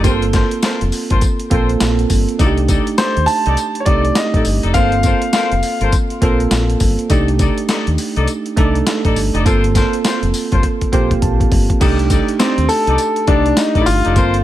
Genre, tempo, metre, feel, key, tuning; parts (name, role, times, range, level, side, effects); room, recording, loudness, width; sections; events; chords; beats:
R&B, new jack swing; 102 BPM; 4/4; swing 62% on 16ths; C dorian; A4 = 440 Hz
bell-like tine electric piano; accompaniment; 0.0-14.4 s; A3 to A5; -19 LUFS; right 5 dB; wide subtle chorus
mellow horn section; stabs; 0.0-14.3 s; Eb4 to D5; -24 LUFS; left 4 dB; digital delay
deep dub fingered electric bass; bass; 0.0-14.4 s; F1 to Eb2; -17 LUFS; equal
dusty soul sampler-style drum kit; drums; 0.0-14.4 s; crash cymbal, hi-hat, kick drum, snare drum, tambourine; -17 LUFS; equal; overdrive
warm concert grand piano; melody; 3.0-5.9, 12.4-14.4 s; C4 to A5; -17 LUFS; left 2 dB; digital delay
digital ambience; -13 LUFS; side -13 dB against mid
0.0-11.8 A section; 11.8-14.4 A section
drum fill 10.6-11.8; tine electric piano fill 10.6-11.8
0.0 Gm11; 2.4 Cm69; 4.7 Gm11; 7.1 Cm69; 9.5 Gm11; 11.8 Cm69
| 0.04 0.63 1.22 1.81 | 2.40 2.98 3.57 4.16 | 4.75 5.34 5.92 6.51 | 7.10 7.69 8.28 8.87 | 9.45 10.04 10.63 11.22 | 11.81 12.40 12.98 13.57 | 14.16